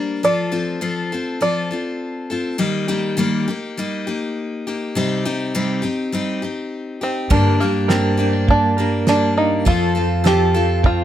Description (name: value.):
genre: acoustic folk duo or small band.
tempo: 102 BPM.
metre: 4/4.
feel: straight.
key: G minor.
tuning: A4 = 439 Hz.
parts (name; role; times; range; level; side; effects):
open-back banjo; melody; 0.0-2.3, 7.0-11.0 s; Bb3 to D5; -20 LUFS; right 2 dB; none.
picked steel-string acoustic guitar; accompaniment; 0.0-11.0 s; G2 to Bb4; -20 LUFS; left 2 dB; none.
electric guitar through a small old amp; arpeggios; 7.3-11.0 s; F3 to Bb4; -22 LUFS; right 3 dB; tremolo.
upright bass; bass; 7.3-11.0 s; F2 to G2; -21 LUFS; right 1 dB; none.
cloth-damped thuddy drum kit; drums; 7.3-11.0 s; kick drum, snare drum; -18 LUFS; right 1 dB; none.
room: light reverb.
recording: close, detailed microphones.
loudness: -17 LUFS.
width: side -11 dB against mid.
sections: 0.0-7.3 A section; 7.3-11.0 B section.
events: none.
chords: 0.2 F; 2.6 Eb; 5.0 Cm; 7.3 Gm; 9.7 F.